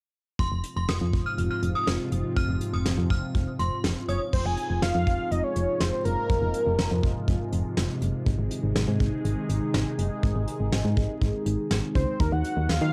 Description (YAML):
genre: synth-pop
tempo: 122 BPM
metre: 4/4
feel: straight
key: unclear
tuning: A4 = 440 Hz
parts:
  - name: synth chime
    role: second line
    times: 0.4-4.2 s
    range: C6 to F6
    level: -36 LUFS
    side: equal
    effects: ensemble chorus, phaser, cassette tape, analog delay
  - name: phased analog pad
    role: sustained chords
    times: 0.4-12.9 s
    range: Ab2 to Ab4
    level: -33 LUFS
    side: equal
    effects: phaser, chorus, cassette tape
  - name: solid FM bass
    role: bass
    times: 0.4-12.9 s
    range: F1 to Eb3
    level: -29 LUFS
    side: equal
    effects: none
  - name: soft brush drum kit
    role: drums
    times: 0.4-12.8 s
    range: crash cymbal, hi-hat, kick drum, snare drum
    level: -31 LUFS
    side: equal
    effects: cassette tape
  - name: fat analog lead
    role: melody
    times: 4.1-7.5, 12.0-12.9 s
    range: Bb4 to Ab5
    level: -31 LUFS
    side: equal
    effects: chorus, cassette tape, analog delay, plate reverb
room: light reverb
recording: home recording on cassette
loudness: -26 LUFS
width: mono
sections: 0.4-4.3 A section; 4.3-12.9 B section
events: none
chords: 0.4 Fm; 8.3 Ab; 12.2 Ebmadd9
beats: | 0.40 0.89 1.38 1.87 | 2.36 2.85 3.35 3.84 | 4.33 4.82 5.31 5.81 | 6.30 6.79 7.28 7.77 | 8.27 8.76 9.25 9.74 | 10.23 10.72 11.21 11.71 | 12.20 12.69